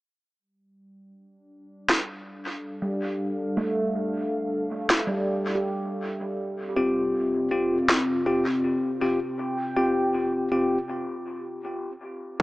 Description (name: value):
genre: ambient dub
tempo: 80 BPM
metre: 4/4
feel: swing 55% on 16ths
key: unclear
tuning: A4 = 440 Hz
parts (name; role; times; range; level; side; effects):
- warbly tape-like pad; sustained chords; 2.0-12.4 s; C3 to G5; -30 LUFS; equal; chorus, built-in reverb
- electronic snare drum; drums; 1.9-8.1 s; none; -24 LUFS; equal; dub echo
- handpan; arpeggios; 2.8-8.4 s; G3 to G4; -30 LUFS; right 1 dB; low-pass filter, dub echo
- bell-like tine electric piano; stabs; 6.8-10.8 s; C4 to G4; -25 LUFS; left 1 dB; medium stereo tremolo, dub echo
room: light reverb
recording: echo-heavy mix, small speaker sound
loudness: -24 LUFS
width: side -18 dB against mid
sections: 0.4-12.4 A section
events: filter sweep on ambient pad 0.4-12.4; filter sweep on handpan 0.4-12.4; break 10.9-12.4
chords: 0.4 G5; 6.4 Csus4